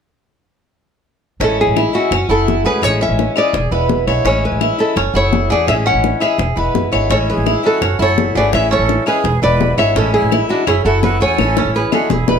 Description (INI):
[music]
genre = latin, Cuban son and guajira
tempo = 168 BPM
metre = 4/4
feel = straight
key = A major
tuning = A4 = 439 Hz
[part]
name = nylon-string guitar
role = melody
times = 1.4-12.4 s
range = F#4 to F#5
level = -17 LUFS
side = equal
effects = plate reverb
[part]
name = picked old ladder-braced acoustic guitar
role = accompaniment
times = 1.4-12.4 s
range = D3 to F#4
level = -22 LUFS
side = left 5 dB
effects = none
[part]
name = Cuban tres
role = arpeggios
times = 1.4-12.4 s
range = C#4 to G#5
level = -20 LUFS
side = right 3 dB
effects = none
[part]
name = upright bass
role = bass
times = 1.4-12.4 s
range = E1 to E2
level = -19 LUFS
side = right 1 dB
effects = none
[part]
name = bongos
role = percussion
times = 1.4-12.4 s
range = none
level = -20 LUFS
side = left 6 dB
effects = none
[part]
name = claves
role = percussion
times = 1.8-12.1 s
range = none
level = -24 LUFS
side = left 7 dB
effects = none
[part]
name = breathy bright jazz flute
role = second line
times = 7.1-12.4 s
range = D4 to C#5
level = -22 LUFS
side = right 7 dB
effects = none
[sound]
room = moderate small room reverb, RT60 0.5 s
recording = none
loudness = -12 LUFS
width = side -7 dB against mid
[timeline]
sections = 1.4-12.4 A section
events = drum fill 11.4-12.4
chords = 1.4 Amaj7; 2.1 F#m7; 2.8 Amaj7; 3.5 E7; 4.3 Amaj7; 5.0 F#m7; 5.7 Amaj7; 6.4 E7; 7.1 Amaj7; 7.8 F#m7; 8.5 Amaj7; 9.2 E7; 10.0 Amaj7; 10.7 F#m7; 11.4 Amaj7